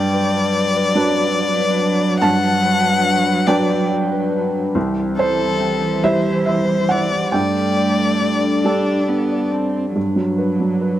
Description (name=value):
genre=neoclassical piano and strings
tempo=47 BPM (dotted quarters)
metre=6/8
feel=rubato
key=G major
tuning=A4 = 438 Hz
part: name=rich violin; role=melody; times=0.0-9.5 s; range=A4 to F#5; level=-20 LUFS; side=left 4 dB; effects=none
part: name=rich cello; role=second line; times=0.0-11.0 s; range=E3 to D4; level=-24 LUFS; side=right 4 dB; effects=none
part: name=felt-muted upright piano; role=accompaniment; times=0.0-11.0 s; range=C2 to A5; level=-19 LUFS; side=right 2 dB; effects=none
part: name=warm analog pad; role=sustained chords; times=0.0-11.0 s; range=F#3 to C5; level=-26 LUFS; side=left 2 dB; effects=wide subtle chorus
part: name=concert harp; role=arpeggios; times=0.0-11.0 s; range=C4 to A5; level=-27 LUFS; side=left 8 dB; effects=slapback echo
room=small room ambience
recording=dry, close 1970s-style studio recording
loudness=-15 LUFS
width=side -12 dB against mid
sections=0.0-10.0 A section; 10.0-11.0 B section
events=none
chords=0.0 Gmaj7; 4.8 C; 7.3 Gsus2; 10.0 Gmaj7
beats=0.96 | 2.22 3.48 | 4.75 6.03 | 7.34 8.65 | 9.96